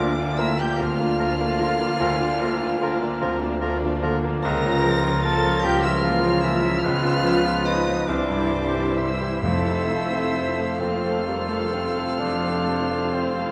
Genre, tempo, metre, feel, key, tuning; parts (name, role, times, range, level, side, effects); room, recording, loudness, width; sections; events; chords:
classical; 43-50 BPM (dotted quarters); 12/8; rubato; A4 = 440 Hz
clear baby grand piano; melody; 0.0-13.5 s; C2 to C5; -29 LUFS; equal
warm chamber violin section; melody; 0.0-13.5 s; D6 to Bb6; -35 LUFS; equal
clear clarinet; second line; 0.0-13.5 s; F4 to A4; -34 LUFS; equal
clear oboe; second line; 0.0-13.5 s; Bb4 to C5; -35 LUFS; equal
dark chamber violin section; second line; 0.0-13.5 s; Cb4 to F5; -38 LUFS; equal
silver concert flute; second line; 0.0-13.5 s; D5 to Bb5; -33 LUFS; equal
clear bassoon; accompaniment; 0.0-13.5 s; E3 to D4; -33 LUFS; equal
warm symphonic viola section; accompaniment; 0.0-13.5 s; D3 to E4; -35 LUFS; equal
dark French horn section; sustained chords; 0.0-13.5 s; Bb3 to A4; -33 LUFS; equal
clear chamber double bass section; bass; 0.0-13.4 s; C2 to F2; -33 LUFS; equal
warm chamber cello section; bass; 0.0-13.5 s; D4 to Bb4; -34 LUFS; equal
warm tuba; bass; 0.0-13.4 s; F1 to D2; -33 LUFS; equal
timpani; percussion; 9.4-10.8 s; F2; -32 LUFS; equal
moderate scoring stage reverb, RT60 1.8 s; vinyl crackle; -23 LUFS; mono
0.0-13.5 A section
0.0 Bb/D; 4.4 Bbm/Db; 6.8 Db7; 8.1 C; 9.4 F